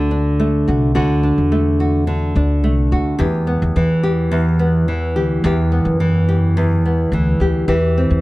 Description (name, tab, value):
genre	acoustic pop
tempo	107 BPM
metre	4/4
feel	straight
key	unclear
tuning	A4 = 436 Hz
part	nylon-string guitar	accompaniment	0.0-8.2 s	E2 to G4	-16 LUFS	equal	none
part	upright bass	bass	0.0-8.2 s	C2 to F#2	-18 LUFS	equal	none
room	light reverb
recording	dark, warm production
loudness	-14 LUFS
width	side -18 dB against mid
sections	0.0-8.2 A section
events	none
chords	0.0 D; 3.2 Em; 7.7 C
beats	0.40 | 0.96 1.52 2.08 2.64 | 3.20 3.76 4.32 4.88 | 5.43 5.99 6.55 7.11 | 7.67